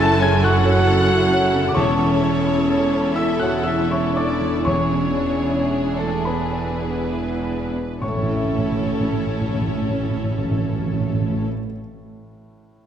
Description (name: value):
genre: classical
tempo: 32-46 BPM (dotted quarters)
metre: 12/8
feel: rubato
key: A major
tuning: A4 = 441 Hz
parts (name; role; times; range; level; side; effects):
- clear baby grand piano; melody; 0.0-12.9 s; E2 to A6; -23 LUFS; equal; none
- warm symphonic violin section; melody; 0.0-11.4 s; G#4 to A4; -31 LUFS; left 4 dB; none
- warm studio violin section; second line; 0.0-11.4 s; A4 to A5; -27 LUFS; left 2 dB; none
- rich studio viola section; accompaniment; 0.0-11.4 s; C#4 to E4; -29 LUFS; right 2 dB; none
- mellow French horn section; sustained chords; 0.0-11.5 s; A3 to A4; -25 LUFS; left 2 dB; none
- rich studio cello section; bass; 0.0-11.4 s; E2 to A2; -28 LUFS; right 2 dB; none
- warm studio double bass section; bass; 0.0-11.4 s; E1 to A1; -26 LUFS; right 4 dB; none
- timpani; percussion; 1.8-11.4 s; E2 to A2; -25 LUFS; right 1 dB; none
room: wet scoring stage reverb, RT60 1.8 s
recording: none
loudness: -18 LUFS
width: side -9 dB against mid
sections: 0.0-8.0 A section; 8.0-12.9 B section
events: slowing down 0.0-8.0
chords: 0.0 F#m7; 1.8 A/E; 4.7 E7; 8.0 A